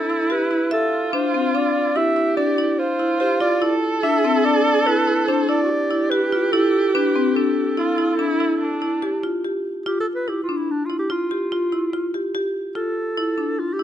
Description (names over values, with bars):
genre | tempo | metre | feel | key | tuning
contemporary instrumental, chamber music in an uneven meter | 144 BPM | 7/4 | straight | G mixolydian | A4 = 440 Hz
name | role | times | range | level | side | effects
clear clarinet | melody | 0.0-13.8 s | D4 to E5 | -23 LUFS | right 1 dB | none
warm viola | second line | 0.0-9.2 s | D4 to A4 | -22 LUFS | right 4 dB | none
marimba with hard mallets | arpeggios | 0.1-13.8 s | C4 to E5 | -21 LUFS | left 2 dB | none
room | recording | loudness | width
light reverb | close, detailed microphones | -18 LUFS | side -10 dB against mid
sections
0.0-9.4 A section; 9.4-13.8 B section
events
none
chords
0.0 C (rootless); 0.7 Fmaj7/C; 9.4 G5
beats
0.31 | 0.72 1.13 1.55 1.96 2.38 2.79 3.21 | 3.62 4.04 4.45 4.87 5.28 5.70 6.11 | 6.53 6.95 7.36 7.78 8.19 8.61 9.02 | 9.44 9.85 10.27 10.68 11.10 11.52 11.93 | 12.34 12.76 13.17 13.59